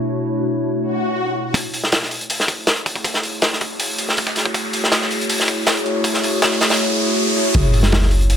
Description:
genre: drum and bass, jungle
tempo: 160 BPM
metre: 4/4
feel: straight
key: F# minor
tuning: A4 = 440 Hz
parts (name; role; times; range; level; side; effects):
- warbly tape-like pad; sustained chords; 0.0-7.5 s; B2 to C#5; -22 LUFS; left 1 dB; chorus, built-in reverb, vintage 12-bit sampler grit
- swell, riser and sub drop; sound effects; 0.9-8.4 s; none; -24 LUFS; equal; none
- crunchy breakbeat drum kit; drums; 1.5-8.4 s; hi-hat, kick drum, snare drum; -18 LUFS; equal; high-pass filter on kick, high-pass filter on hats, high-pass filter on snare, high-pass filter on room
- dusty soul sampler-style drum kit; drums; 1.5-8.4 s; hi-hat, snare drum; -27 LUFS; right 1 dB; none
- long sustained 808-style bass; bass; 7.5-8.4 s; F#1; -15 LUFS; equal; none
room: light reverb, small room reverb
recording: none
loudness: -16 LUFS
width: side -9 dB against mid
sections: 0.0-1.5 A section; 1.5-7.5 B section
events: swell 0.9-1.5; build-up 1.5-7.5; riser 1.5-7.5; filter sweep on ambient pad 1.5-7.5; impact 7.5-8.4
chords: 0.0 Bm11; 1.5 F#m7; 7.5 N.C.

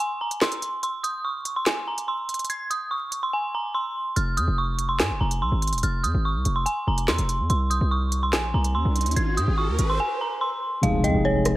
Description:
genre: hip hop, drill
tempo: 144 BPM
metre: 4/4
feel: half-time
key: F minor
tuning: A4 = 441 Hz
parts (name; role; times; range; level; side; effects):
- dark detuned synth bell; melody; 0.0-11.5 s; Db5 to Ab6; -26 LUFS; right 1 dB; chorus, low-pass filter
- drill drum kit; drums; 0.0-11.6 s; handclaps, hi-hat, rim click, snare drum; -26 LUFS; equal; none
- hard-hitting 808-style bass; bass; 4.2-11.6 s; Eb1 to Ab2; -24 LUFS; equal; none
- riser and impact; sound effects; 8.7-11.6 s; none; -30 LUFS; equal; none
- mellow tine electric piano; accompaniment; 10.8-11.6 s; C3 to Ab4; -22 LUFS; left 2 dB; low-pass filter
- mallet-like synth pluck; second line; 11.0-11.6 s; G5 to Ab5; -32 LUFS; equal; chorus
room: light reverb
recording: vinyl crackle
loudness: -22 LUFS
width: side -16 dB against mid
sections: 0.0-10.8 A section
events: break 0.0-4.2, 10.0-10.8; drums muted 3.3-4.2; riser 8.7-10.8; impact 10.8-11.6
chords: 0.0 N.C.; 4.2 Fm; 7.5 N.C.; 9.2 Ab; 10.8 Fm7

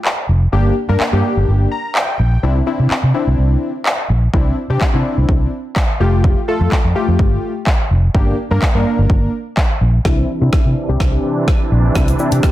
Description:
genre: dance-pop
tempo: 126 BPM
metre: 4/4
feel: straight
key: C mixolydian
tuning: A4 = 440 Hz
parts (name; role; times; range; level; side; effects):
- deep house drum kit; drums; 0.0-12.5 s; handclaps, hi-hat, kick drum, shaker, snare drum; -16 LUFS; equal; none
- vintage muted fingered electric bass; bass; 0.3-12.5 s; F1 to C3; -14 LUFS; equal; sidechain pumping
- warm analog keys; accompaniment; 0.5-12.5 s; A3 to Bb5; -20 LUFS; left 2 dB; chorus, sidechain pumping, low-pass filter
- filtered supersaw swell; sustained chords; 10.0-12.5 s; C3 to D4; -21 LUFS; right 2 dB; sidechain pumping, low-pass filter
room: light reverb, digital ambience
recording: dense, heavily limited modern master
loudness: -13 LUFS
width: side -15 dB against mid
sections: 0.0-10.1 A section; 10.1-12.5 B section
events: synth keys fill 1.5-2.4; build-up 10.1-12.5; drum fill 10.1-12.5; filter sweep 10.1-12.5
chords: 0.0 N.C.; 0.5 Gm; 2.4 Cadd9; 6.0 Fadd9; 8.1 Gm; 10.1 Cadd9

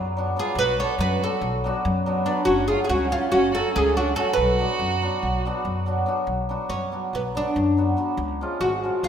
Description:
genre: balkan folk, Balkan wedding band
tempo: 284 BPM (eighths)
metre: 9/8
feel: straight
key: B dorian sharp4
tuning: A4 = 440 Hz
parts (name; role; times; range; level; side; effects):
- hammered dulcimer; accompaniment; 0.0-9.1 s; E#3 to F#4; -27 LUFS; right 1 dB; none
- upright bass; bass; 0.0-9.1 s; F#1 to F#2; -27 LUFS; left 1 dB; none
- oud; melody; 0.4-9.1 s; B3 to C#5; -23 LUFS; equal; none
- warm violin; second line; 0.4-5.8 s; B3 to A4; -29 LUFS; right 5 dB; none
room: moderate concert hall reverb, RT60 1.9 s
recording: minimal, uncompressed stereo recording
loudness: -21 LUFS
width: side -8 dB against mid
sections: 0.0-6.3 A section; 6.3-9.1 B section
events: oud solo 6.3-9.1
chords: 0.0 Bm; 2.5 F#m; 4.4 Bm; 8.2 C#

